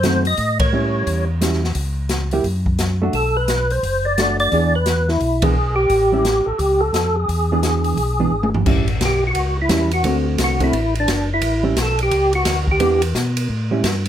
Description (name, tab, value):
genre	soul jazz organ trio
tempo	174 BPM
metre	4/4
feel	swing 63% on 8ths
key	A mixolydian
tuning	A4 = 439 Hz
part	percussive tonewheel organ	melody	0.0-13.0 s	D4 to D#5	-19 LUFS	equal	slow rotary speaker, chorus vibrato
part	hollow-body jazz guitar	accompaniment	0.0-13.8 s	D3 to G#4	-21 LUFS	right 3 dB	none
part	mellow tonewheel organ	bass	0.0-14.1 s	F#1 to B2	-21 LUFS	equal	overdrive, chorus vibrato, slow rotary speaker
part	open jazz drum kit	drums	0.0-14.1 s	crash cymbal, hi-hat, kick drum, ride cymbal, snare drum, toms	-23 LUFS	equal	none
room	moderate studio reverb, RT60 0.6 s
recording	none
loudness	-16 LUFS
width	side -10 dB against mid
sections	0.0-8.7 A section; 8.7-14.1 B section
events	band accent 0.6, 5.4; drum fill 8.3-8.7; tonewheel organ solo 8.7-14.1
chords	0.4 A7; 1.8 C#m; 2.5 F#m; 3.1 Bm7; 4.5 E7; 5.9 A7; 7.3 E7; 8.7 A7; 10.0 D7; 11.4 A7; 12.8 Em7; 13.5 A7